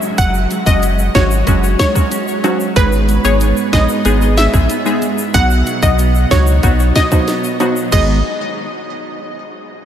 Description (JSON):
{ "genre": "dancehall", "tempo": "93 BPM", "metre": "4/4", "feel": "straight", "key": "G# minor", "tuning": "A4 = 440 Hz", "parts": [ { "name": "clean electric guitar", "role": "arpeggios", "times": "0.0-8.2 s", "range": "G#2 to F#4", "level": "-21 LUFS", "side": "right 4 dB", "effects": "tremolo, ping-pong delay" }, { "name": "egg shaker and timbales", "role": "percussion", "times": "0.0-8.2 s", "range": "none", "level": "-26 LUFS", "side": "equal", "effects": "none" }, { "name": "downlifter", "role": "sound effects", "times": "0.0-2.8 s", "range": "none", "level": "-38 LUFS", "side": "equal", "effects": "none" }, { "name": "analog pluck", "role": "melody", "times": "0.2-8.2 s", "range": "B4 to F#5", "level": "-18 LUFS", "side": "equal", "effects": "chorus, ping-pong delay" }, { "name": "warm sub bass", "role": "bass", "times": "0.2-8.2 s", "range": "F#1 to C#2", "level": "-14 LUFS", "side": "equal", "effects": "none" }, { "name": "island pop drum kit", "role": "drums", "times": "0.2-8.1 s", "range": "crash cymbal, hi-hat, kick drum, rim click, snare drum", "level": "-18 LUFS", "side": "equal", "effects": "none" }, { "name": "wavetable chord stab", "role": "accompaniment", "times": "0.7-8.2 s", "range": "F#3 to G#4", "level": "-20 LUFS", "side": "left 1 dB", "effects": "sidechain pumping" } ], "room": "moderate huge ambient reverb, RT60 9.1 s", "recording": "dreamy mix soaked in reverb", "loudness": "-11 LUFS", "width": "side -10 dB against mid", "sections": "0.0-7.9 A section; 7.9-9.8 B section", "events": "none", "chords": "0.0 F#sus2; 2.8 G#m; 5.3 B; 7.9 G#m" }